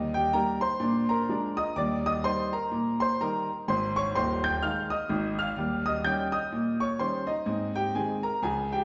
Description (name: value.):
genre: jazz, stride piano.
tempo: 126 BPM.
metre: 4/4.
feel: swing 60% on 8ths.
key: Eb major, Ab major from 3.7 s.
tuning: A4 = 440 Hz.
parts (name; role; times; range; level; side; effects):
warm grand piano; solo; 0.0-8.8 s; Eb1 to G6; -28 LUFS; equal; none.
room: wet recital hall reverb, RT60 1.5 s.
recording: recorded in a church or concert hall, nothing above 7.7 kHz.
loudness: -28 LUFS.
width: mono.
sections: 0.0-8.8 A section.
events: none.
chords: 0.0 Eb; 0.8 Bb7; 1.8 Eb; 3.7 Ab; 5.6 Eb7; 7.5 Ab.